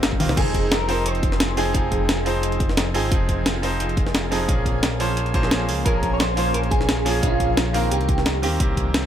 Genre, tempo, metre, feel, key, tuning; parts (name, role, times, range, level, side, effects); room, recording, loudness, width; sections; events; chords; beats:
liquid drum and bass; 175 BPM; 4/4; straight; F minor; A4 = 441 Hz
bright baby grand piano; accompaniment; 0.0-9.1 s; Eb3 to C5; -26 LUFS; right 1 dB
shimmering ambient pad; sustained chords; 0.0-9.1 s; F3 to Bb4; -30 LUFS; left 1 dB; chorus, built-in reverb, sidechain pumping
smooth gliding synth bass; bass; 0.0-9.1 s; F1 to Eb2; -25 LUFS; equal
breakbeat sampler-style drum kit; drums; 0.0-9.0 s; crash cymbal, hi-hat, snare drum, toms; -24 LUFS; equal
electronic kick drum; drums; 0.1-8.8 s; -23 LUFS; equal
electric guitar at the edge of break-up; melody; 0.4-2.6, 5.9-8.4 s; F4 to Db5; -26 LUFS; right 1 dB; ensemble chorus, tape echo
little or no reverb; -18 LUFS; side -10 dB against mid
0.4-9.1 A section
drum fill 0.1; drop 0.4-9.1
0.4 Fm7; 4.5 Bbm7; 7.9 Cm7
0.03 | 0.37 0.71 1.06 1.40 | 1.74 2.09 2.43 2.77 | 3.12 3.46 3.80 4.14 | 4.49 4.83 5.17 5.51 | 5.86 6.20 6.54 6.89 | 7.23 7.57 7.92 8.26 | 8.60 8.94